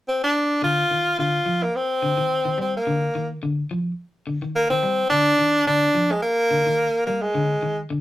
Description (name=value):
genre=afrobeat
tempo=107 BPM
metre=4/4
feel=swing 55% on 16ths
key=unclear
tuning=A4 = 440 Hz
part: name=edgy tenor saxophone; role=melody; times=0.1-7.8 s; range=Ab3 to F4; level=-19 LUFS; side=equal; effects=none
part: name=electric guitar at the edge of break-up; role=arpeggios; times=0.6-8.0 s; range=D3 to G3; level=-26 LUFS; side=left 2 dB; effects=none
room=moderate studio reverb, RT60 0.5 s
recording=rough rehearsal-room recording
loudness=-19 LUFS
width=side -14 dB against mid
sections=0.6-8.0 A section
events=none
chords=0.0 N.C.; 0.6 Dm; 1.7 Cmadd9/D; 2.9 Bbadd11/D; 4.0 Cmadd9/D; 5.1 Dm; 6.2 Ebmaj7/D; 7.3 D(b5, no3)